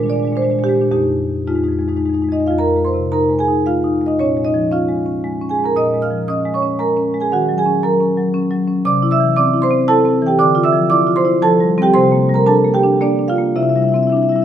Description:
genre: classical, contemporary piece for solo marimba.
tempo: 106-119 BPM.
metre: 3/4.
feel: rubato.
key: F minor.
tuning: A4 = 441 Hz.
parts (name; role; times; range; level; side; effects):
marimba with medium hard mallets; solo; 0.0-14.4 s; F2 to F6; -13 LUFS; equal; none.
room: moderate recital hall reverb, RT60 1.8 s.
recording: minimal, uncompressed stereo recording.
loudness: -13 LUFS.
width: side -10 dB against mid.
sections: 0.0-2.6 A section; 2.6-14.4 B section.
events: none.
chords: 0.0 Bb7; 0.9 Fm7; 4.2 Bbm7; 7.3 Ebm7; 8.8 Cadd9; 10.4 Dmadd9; 11.4 Fadd9; 12.0 Csus2; 13.6 Cadd9.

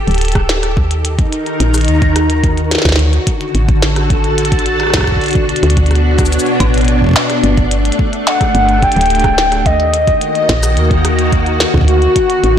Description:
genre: IDM.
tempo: 108 BPM.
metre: 4/4.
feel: straight.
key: G harmonic minor.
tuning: A4 = 440 Hz.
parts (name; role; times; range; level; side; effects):
soft string machine; sustained chords; 0.0-12.6 s; B2 to Bb5; -16 LUFS; left 1 dB; ensemble chorus.
woody FM bass; bass; 0.1-12.6 s; D1 to Eb2; -14 LUFS; equal; tube saturation.
glitchy drum kit; drums; 0.1-12.5 s; hi-hat, rim click, shaker, snare drum; -18 LUFS; equal; soft clipping on snare.
electronic kick drum; drums; 0.4-12.3 s; none; -15 LUFS; equal; none.
warbly nostalgic lead; melody; 8.3-12.6 s; F#4 to G5; -14 LUFS; left 1 dB; chorus, tape echo.
room: light reverb.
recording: blown-out, overdriven recording, overdrive.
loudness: -10 LUFS.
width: side -9 dB against mid.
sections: 0.0-12.6 A section.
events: none.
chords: 0.0 Gsus2; 0.8 Ebm; 3.0 D; 5.2 Bmadd9; 7.4 Gsus2; 9.7 Ebm; 11.9 D.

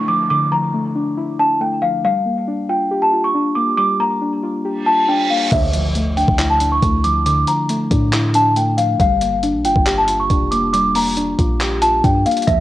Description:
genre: hip hop, trap.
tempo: 138 BPM.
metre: 4/4.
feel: half-time.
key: D harmonic minor.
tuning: A4 = 440 Hz.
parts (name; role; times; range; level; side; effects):
worn celesta; melody; 0.0-12.6 s; E5 to D6; -17 LUFS; equal; low-pass filter, cassette tape, analog delay.
muted felt-like synth keys; accompaniment; 0.0-12.6 s; D3 to G4; -20 LUFS; left 2 dB; chorus, low-pass filter, cassette tape.
downlifter, reverse cymbal and impact; sound effects; 0.0-2.0, 4.8-7.3 s; none; -28 LUFS; right 2 dB; none.
warm 808-style bass; bass; 5.5-12.6 s; F1 to A2; -21 LUFS; equal; none.
boom bap sampler-style drum kit; drums; 5.5-12.6 s; crash cymbal, handclaps, hi-hat, kick drum; -20 LUFS; equal; overdrive, cassette tape.
room: light reverb.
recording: home recording on cassette.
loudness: -14 LUFS.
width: side -14 dB against mid.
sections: 0.0-5.5 A section; 5.5-12.6 B section.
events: reverse cymbal 4.8-5.5; impact 5.5-7.3; filter sweep 5.5-12.5.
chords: 0.0 Dmadd9; 2.0 Gm7; 5.5 Dmadd9; 9.0 Gm7.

